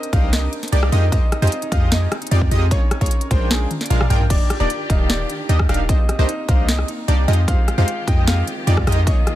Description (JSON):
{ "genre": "future bass", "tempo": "151 BPM", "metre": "4/4", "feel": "half-time", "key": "unclear", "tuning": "A4 = 441 Hz", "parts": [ { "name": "bright grand piano", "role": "melody", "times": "0.0-9.3 s", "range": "Ab4 to G5", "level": "-29 LUFS", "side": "left 2 dB", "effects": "sidechain pumping, ping-pong delay" }, { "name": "concert harp", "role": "arpeggios", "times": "0.0-9.4 s", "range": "C4 to D5", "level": "-32 LUFS", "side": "right 1 dB", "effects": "sidechain pumping, digital delay" }, { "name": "trap drum kit", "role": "drums", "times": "0.0-9.3 s", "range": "crash cymbal, hi-hat, rim click, snare drum, toms", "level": "-24 LUFS", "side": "left 1 dB", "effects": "none" }, { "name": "wide unison pluck", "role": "arpeggios", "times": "0.1-9.2 s", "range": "C5 to G5", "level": "-32 LUFS", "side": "right 1 dB", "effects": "sidechain pumping" }, { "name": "supersaw stab", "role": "riff", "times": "0.1-9.2 s", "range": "Ab3 to G5", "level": "-26 LUFS", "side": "right 1 dB", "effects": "sidechain pumping" }, { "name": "warm 808-style bass", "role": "bass", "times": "0.1-9.1 s", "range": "Eb1 to F2", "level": "-18 LUFS", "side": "equal", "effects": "sidechain pumping" }, { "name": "electronic kick drum", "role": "drums", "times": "0.1-9.2 s", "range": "none", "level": "-18 LUFS", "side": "equal", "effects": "none" }, { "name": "clear symphonic string section", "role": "sustained chords", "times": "4.3-9.4 s", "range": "Eb3 to D5", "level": "-32 LUFS", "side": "left 2 dB", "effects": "sidechain pumping" } ], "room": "little or no reverb", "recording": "none", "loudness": "-16 LUFS", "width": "side -14 dB against mid", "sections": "0.0-4.3 A section; 4.3-9.4 A section", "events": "drop 0.0-4.3, 4.3-9.4; drum fill 3.7-4.3", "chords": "0.0 Cm9; 0.9 Fm9; 2.7 Db69; 3.5 Bb7; 4.3 Ebmaj7; 5.9 Cm9; 7.3 Fm9" }